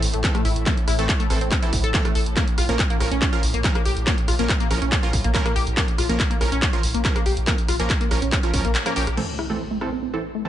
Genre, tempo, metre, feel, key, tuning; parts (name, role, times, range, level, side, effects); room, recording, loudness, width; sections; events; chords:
driving peak-time techno; 141 BPM; 4/4; straight; A4 = 440 Hz
tight sequenced synth; riff; 0.0-10.4 s; A3 to A4; -27 LUFS; left 2 dB; chorus, overdrive, sidechain pumping, dub echo
saturated sub bass; bass; 0.0-9.2 s; A1 to Bb1; -25 LUFS; equal; overdrive, sidechain pumping, low-pass filter
swarming drone; drone; 0.0-9.2 s; A2; -34 LUFS; equal; built-in reverb, sidechain pumping
punchy analog drum machine; drums; 0.0-9.9 s; crash cymbal, handclaps, hi-hat, rim click; -26 LUFS; equal
supersaw stab; stabs; 0.2-10.5 s; E3 to Bb4; -29 LUFS; right 3 dB; sidechain pumping, low-pass filter, tape echo
electronic kick drum; drums; 0.2-8.6 s; -22 LUFS; equal; overdrive
impact; sound effects; 9.2-10.5 s; -35 LUFS; equal
light reverb, digital ambience; nothing above 10.5 kHz; -19 LUFS; side -12 dB against mid
0.0-9.2 A section; 9.2-10.5 B section
drop 0.0-9.2; kick drops out 8.8-9.2; band accent 8.8; impact 9.2-10.5; filter sweep on synth arpeggio sound 9.2-10.5
0.0 Am; 2.4 Bbm; 9.2 Am